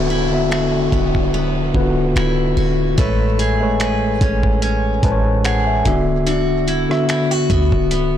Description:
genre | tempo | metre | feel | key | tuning
contemporary R&B | 73 BPM | 4/4 | swing 54% on 16ths | unclear | A4 = 439 Hz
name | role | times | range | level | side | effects
mellow tine electric piano | accompaniment | 0.0-8.2 s | A2 to A5 | -18 LUFS | left 2 dB | fast stereo tremolo
picked steel-string acoustic guitar | arpeggios | 0.0-8.2 s | D3 to B4 | -22 LUFS | equal | tape echo
clean 808-style bass | bass | 0.0-8.2 s | C#1 to D2 | -21 LUFS | right 1 dB | none
downlifter | sound effects | 0.0-6.3 s | none | -30 LUFS | right 1 dB | none
dusty soul sampler-style drum kit | drums | 0.5-8.1 s | finger snaps, hi-hat, kick drum, rim click | -22 LUFS | right 1 dB | soft clipping on snare
room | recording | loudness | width
little or no reverb | blown-out, overdriven recording, overdrive | -15 LUFS | side -10 dB against mid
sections
0.0-8.2 A section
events
tine electric piano fill 4.6-6.3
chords
0.0 D69; 3.0 Amaj9; 5.9 D69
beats
0.52 1.34 2.16 | 2.98 3.80 4.63 5.45 | 6.27 7.09 7.91

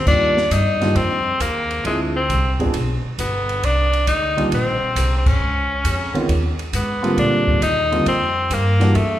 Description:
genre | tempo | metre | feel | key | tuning
jazz, small-group swing and bop | 135 BPM | 4/4 | swing 68% on 8ths | unclear | A4 = 440 Hz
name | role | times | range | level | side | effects
bright tenor saxophone | melody | 0.0-9.2 s | Ab3 to Eb4 | -20 LUFS | left 2 dB | none
upright bass | bass | 0.0-9.2 s | G1 to Bb2 | -21 LUFS | equal | none
warm grand piano | accompaniment | 0.1-8.9 s | D3 to Ab4 | -23 LUFS | right 2 dB | none
open jazz drum kit | drums | 0.1-9.1 s | crash cymbal, hi-hat, kick drum, ride cymbal, snare drum | -25 LUFS | equal | none
room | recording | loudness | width
wet recital hall reverb, RT60 1.7 s | recorded in a church or concert hall | -16 LUFS | side -12 dB against mid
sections
0.1-9.2 A section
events
band accent 5.2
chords
0.1 Ebmaj7; 1.9 Dm7b5; 2.7 G; 3.6 Cm9; 5.4 Db9; 7.2 Ebmaj13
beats
| 0.07 0.52 0.96 1.41 | 1.85 2.30 2.74 3.19 | 3.63 4.07 4.52 4.96 | 5.41 5.85 6.29 6.74 | 7.18 7.62 8.06 8.51 | 8.95

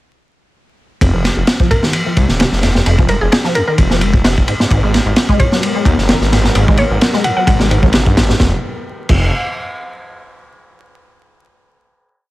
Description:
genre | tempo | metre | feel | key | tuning
breakbeat, breaks | 130 BPM | 4/4 | swing 54% on 16ths | F phrygian | A4 = 440 Hz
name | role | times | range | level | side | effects
deep acid bass | riff | 1.0-9.3 s | F1 to Cb4 | -18 LUFS | equal | analog chorus, ping-pong delay
detuned saw bass | bass | 1.0-9.3 s | Eb1 to Ab2 | -16 LUFS | equal | none
crunchy breakbeat drum kit | drums | 1.0-9.2 s | crash cymbal, kick drum, ride cymbal, snare drum | -14 LUFS | equal | none
mallet-like synth pluck | melody | 1.7-7.6 s | Ab4 to Gb5 | -20 LUFS | equal | chorus, telephone sound, cassette tape, ping-pong delay
phased analog pad | sustained chords | 5.1-8.6 s | Gb3 to Bb4 | -25 LUFS | equal | phaser, chorus, sidechain pumping
room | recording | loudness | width
small room ambience | vinyl crackle | -11 LUFS | side -17 dB against mid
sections
1.0-8.4 drop; 8.4-10.2 final chord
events
drop 1.0-8.4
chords
1.0 N.C.; 4.5 Abm9; 8.4 Fm9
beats
| 1.01 1.47 1.94 2.40 | 2.86 3.32 3.78 4.24 | 4.71 5.17 5.63 6.09 | 6.55 7.01 7.47 7.94 | 8.40 8.86

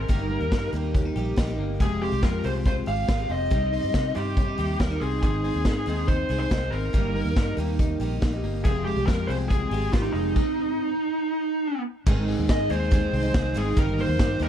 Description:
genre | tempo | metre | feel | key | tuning
jangly indie pop | 140 BPM | 4/4 | straight | Ab major | A4 = 439 Hz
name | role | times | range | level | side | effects
fuzz lead guitar | melody | 0.0-14.5 s | Eb4 to F5 | -28 LUFS | right 1 dB | distortion
picked twelve-string acoustic guitar | accompaniment | 0.0-14.5 s | F2 to G4 | -31 LUFS | right 4 dB | none
twelve-string electric guitar | arpeggios | 0.0-14.5 s | Eb3 to Ab4 | -32 LUFS | left 5 dB | none
vintage muted fingered electric bass | bass | 0.0-14.5 s | F1 to C3 | -28 LUFS | equal | none
raw garage drum kit | drums | 0.1-14.5 s | crash cymbal, hi-hat, kick drum, ride cymbal, snare drum | -26 LUFS | equal | none
room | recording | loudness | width
little or no reverb | none | -22 LUFS | side -10 dB against mid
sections
0.0-12.1 A section; 12.1-14.5 B section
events
none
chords
0.1 Eb/G; 1.8 Fmadd9; 3.5 Cm; 5.2 Ab; 6.9 Eb/G; 8.7 Fmadd9; 10.4 N.C.; 12.1 Ab; 13.8 Eb/G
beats
| 0.09 0.52 0.95 1.38 | 1.80 2.23 2.66 3.09 | 3.52 3.94 4.37 4.80 | 5.23 5.66 6.08 6.51 | 6.94 7.37 7.80 8.22 | 8.65 9.08 9.51 9.94 | 10.36 10.79 11.22 11.64 | 12.07 12.49 12.92 13.35 | 13.77 14.20

